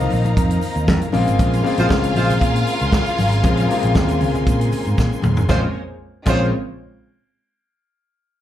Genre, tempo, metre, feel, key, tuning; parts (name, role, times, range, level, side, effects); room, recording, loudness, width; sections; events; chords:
disco; 117 BPM; 4/4; straight; Bb minor; A4 = 441 Hz
warm symphonic violin section; second line; 0.0-6.5 s; Ab3 to F5; -26 LUFS; equal; slapback echo
clear concert grand piano; accompaniment; 0.0-6.5 s; C3 to F4; -22 LUFS; left 4 dB; slapback echo
clear studio string section; sustained chords; 0.0-5.7 s; Db3 to C6; -29 LUFS; equal
fingered electric bass; bass; 0.0-6.5 s; Ab1 to Bb2; -19 LUFS; equal
egg shaker; percussion; 0.0-6.5 s; -46 LUFS; right 4 dB
warm soul drum kit; drums; 0.1-6.4 s; crash cymbal, hi-hat, kick drum, snare drum, toms; -20 LUFS; right 1 dB
congas; percussion; 0.1-6.5 s; -28 LUFS; left 3 dB
warm horn section; stabs; 1.8-2.3, 5.5-6.4 s; Ab3 to C5; -24 LUFS; right 1 dB; slapback echo
light reverb; live gig heard through the venue's PA, club reverb; -15 LUFS; side -12 dB against mid
0.0-5.5 A section; 5.5-7.5 B section
drum fill 5.0-5.5
0.0 F7sus4; 1.1 Bbm9